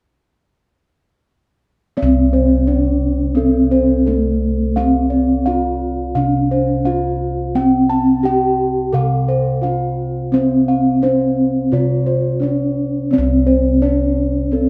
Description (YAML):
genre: gamelan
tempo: 86 BPM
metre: 4/4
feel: straight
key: C pelog barang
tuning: A4 = 440 Hz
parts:
  - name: gamelan-type bronze metallophone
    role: melody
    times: 2.0-14.7 s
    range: A3+20c to A4+20c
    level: -19 LUFS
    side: equal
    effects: none
  - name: gamelan-type bossed gongs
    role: arpeggios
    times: 2.0-14.7 s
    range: A4+20c to A5+20c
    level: -24 LUFS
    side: equal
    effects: none
  - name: gamelan-type bossed gongs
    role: bass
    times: 2.0-14.7 s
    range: C2 to D4-50c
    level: -21 LUFS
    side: equal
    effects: none
room: moderate recital hall reverb, RT60 1.7 s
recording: none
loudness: -16 LUFS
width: mono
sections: 2.0-14.7 A section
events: none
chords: none